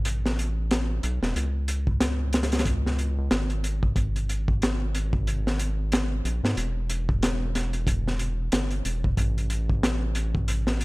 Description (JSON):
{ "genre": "trip hop", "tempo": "92 BPM", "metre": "4/4", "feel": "swing 58% on 16ths", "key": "unclear", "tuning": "A4 = 439 Hz", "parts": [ { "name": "round analog bass", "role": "bass", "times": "0.0-10.8 s", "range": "E1 to G#2", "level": "-27 LUFS", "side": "equal", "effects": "none" }, { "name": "crunchy breakbeat drum kit", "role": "drums", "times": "0.1-10.8 s", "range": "hi-hat, kick drum, snare drum", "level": "-26 LUFS", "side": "equal", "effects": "none" } ], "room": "little or no reverb", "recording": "none", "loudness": "-24 LUFS", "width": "side -23 dB against mid", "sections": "0.0-10.8 A section", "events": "none", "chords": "none" }